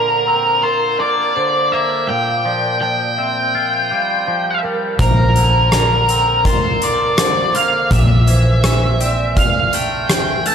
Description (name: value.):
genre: post-rock.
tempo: 82 BPM.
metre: 4/4.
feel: straight.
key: Bb lydian.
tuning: A4 = 440 Hz.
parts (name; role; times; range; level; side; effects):
octave-fuzz lead guitar; melody; 0.0-10.5 s; Bb4 to A5; -16 LUFS; equal; distortion, slapback echo, analog delay.
twangy electric guitar; arpeggios; 0.0-10.5 s; Bb2 to F4; -23 LUFS; left 3 dB; phaser, slapback echo, analog delay.
vibraphone with hard mallets; arpeggios; 0.0-10.5 s; A4 to F5; -23 LUFS; right 4 dB; slapback echo, analog delay.
hollow-body short-scale fingered electric bass; bass; 5.0-10.5 s; Bb1; -16 LUFS; equal; none.
huge arena drum kit; drums; 5.0-10.5 s; hi-hat, kick drum, rim click; -18 LUFS; equal; none.
room: moderate lush hall reverb, RT60 2.9 s.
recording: big arena sound.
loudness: -13 LUFS.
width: side -7 dB against mid.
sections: 0.0-10.5 A section.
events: none.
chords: 0.0 Bbadd9; 2.1 Csus4/Bb; 5.0 Bbadd9; 7.9 Am/Bb.